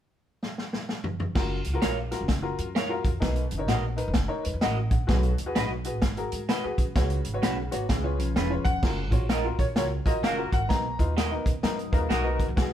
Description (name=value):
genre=uptempo 1960s-style soul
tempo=128 BPM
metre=4/4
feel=swing 63% on 8ths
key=F# major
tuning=A4 = 440 Hz
part: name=vintage drum kit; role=drums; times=0.4-12.7 s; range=crash cymbal, hi-hat, kick drum, snare drum, toms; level=-27 LUFS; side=equal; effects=none
part: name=warm upright piano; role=accompaniment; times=1.3-12.7 s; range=B2 to F#5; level=-32 LUFS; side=left 2 dB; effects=none
part: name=upright bass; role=bass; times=1.4-12.7 s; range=E1 to G#2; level=-30 LUFS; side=equal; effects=none
part: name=electric guitar through a small old amp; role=stabs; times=1.8-12.3 s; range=C#4 to E#5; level=-31 LUFS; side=right 2 dB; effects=phaser
part: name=mellow electric guitar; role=riff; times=7.7-8.8, 11.6-12.6 s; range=E#3 to G#4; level=-35 LUFS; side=left 4 dB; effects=none
part: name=clear concert grand piano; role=melody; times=8.6-11.1 s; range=C#5 to A#5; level=-31 LUFS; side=equal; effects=none
part: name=mellow horn section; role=second line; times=10.1-12.5 s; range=A#3 to A#4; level=-34 LUFS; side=left 2 dB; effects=none
room=light reverb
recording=band playing live in one room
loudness=-24 LUFS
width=side -10 dB against mid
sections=0.0-1.4 A section; 1.4-8.8 B section; 8.8-12.7 C section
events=drum fill 0.4-1.4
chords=0.0 N.C.; 1.4 F#maj7; 3.2 Bmaj7; 5.1 G#m7; 7.0 C#7sus4; 7.9 C#7; 8.8 F#maj7; 10.7 Bmaj7